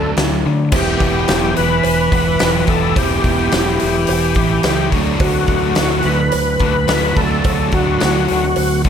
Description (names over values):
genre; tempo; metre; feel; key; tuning
classic rock; 107 BPM; 4/4; straight; E minor; A4 = 440 Hz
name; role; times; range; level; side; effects
overdriven tonewheel organ; melody; 0.0-8.8 s; F#4 to B4; -19 LUFS; left 2 dB; slow rotary speaker, chorus vibrato
distorted electric guitar; riff; 0.0-8.9 s; D3 to G4; -22 LUFS; left 12 dB; overdrive
overdriven semi-hollow guitar; riff; 0.0-8.9 s; D3 to G4; -20 LUFS; right 9 dB; none
growling fingered electric bass; bass; 0.0-8.9 s; E1 to D3; -21 LUFS; equal; overdrive
huge arena drum kit; drums; 0.2-8.9 s; crash cymbal, hi-hat, kick drum, snare drum; -19 LUFS; left 1 dB; none
cowbell; percussion; 0.7-8.7 s; none; -28 LUFS; right 12 dB; none
room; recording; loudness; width
light reverb, studio ambience; none; -13 LUFS; side -8 dB against mid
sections
0.7-8.9 A section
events
none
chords
0.0 D; 0.7 Em; 4.9 D